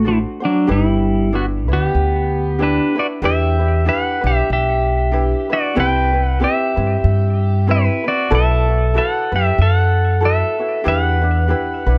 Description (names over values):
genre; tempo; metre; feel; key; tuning
Hawaiian; 94 BPM; 4/4; swing 58% on 8ths; G major, E minor from 3.2 s; A4 = 440 Hz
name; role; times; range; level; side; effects
pedal steel guitar; melody; 0.0-12.0 s; F#3 to G5; -20 LUFS; equal; delay
ukulele; accompaniment; 0.0-12.0 s; C4 to C5; -26 LUFS; equal; none
upright bass; bass; 0.0-12.0 s; G1 to G2; -19 LUFS; equal; none
room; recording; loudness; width
light reverb; none; -17 LUFS; mono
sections
0.0-3.2 A section; 3.2-12.0 B section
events
none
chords
0.0 D7; 0.7 G6; 3.2 Em7; 5.8 Cmaj7; 8.3 B7sus4; 10.9 Em7